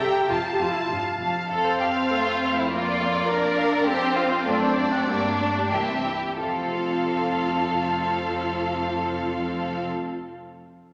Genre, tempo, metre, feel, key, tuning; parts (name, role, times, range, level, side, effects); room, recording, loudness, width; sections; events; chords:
quick classical-period movement for string orchestra; 86-103 BPM; 2/4; straight; F major; A4 = 440 Hz
warm studio violin section; melody; 0.0-9.9 s; C5 to A5; -32 LUFS; equal
clear symphonic violin section; second line; 0.0-9.9 s; C4 to Bb5; -29 LUFS; equal
rich studio viola section; accompaniment; 0.0-9.9 s; G3 to F#5; -29 LUFS; equal
rich chamber cello section; bass; 0.0-9.9 s; F2 to D4; -34 LUFS; equal
rich chamber double bass section; bass; 0.0-9.9 s; F1 to G2; -38 LUFS; equal
wet concert hall reverb, RT60 2.1 s; -24 LUFS; mono
0.0-1.5 A section; 1.5-6.4 B section; 6.4-9.1 C section
slowing down 3.3-6.4
0.3 F; 2.7 Bb/F; 3.9 F; 4.4 D7/F#; 5.1 Gm; 5.7 C7; 6.4 F